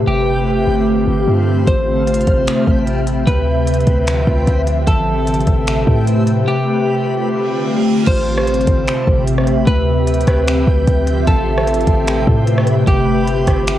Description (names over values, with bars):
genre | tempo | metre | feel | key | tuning
hip hop, atmospheric cloud-rap | 150 BPM | 4/4 | half-time | A minor | A4 = 440 Hz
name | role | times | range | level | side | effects
ethereal airy pad | sustained chords | 0.0-13.8 s | C3 to E5 | -17 LUFS | left 1 dB | ensemble chorus, built-in reverb, sidechain pumping, cassette tape
warm 808-style bass | bass | 0.0-13.8 s | G1 to A2 | -18 LUFS | equal | none
backwards swelling texture | texture | 0.0-13.8 s | G3 to B5 | -27 LUFS | left 1 dB | built-in reverb, cassette tape
electric guitar at the edge of break-up | melody | 0.1-13.8 s | G4 to C5 | -20 LUFS | equal | low-pass filter, cassette tape, analog delay
smooth R&B drum kit | drums | 1.7-13.8 s | crash cymbal, finger snaps, hi-hat, kick drum, rim click | -18 LUFS | equal | cassette tape
reverse cymbal | sound effects | 7.4-8.1 s | none | -28 LUFS | right 5 dB | none
room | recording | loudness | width
light reverb | home recording on cassette | -13 LUFS | side -12 dB against mid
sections
0.0-8.1 A section; 8.1-13.8 B section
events
reverse cymbal 7.4-8.1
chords
0.1 G9sus4; 1.7 Am9; 3.3 Dm11; 4.9 Am9; 6.5 G9sus4; 8.1 Am9; 9.7 Dm11; 11.3 Am9; 12.9 G9sus4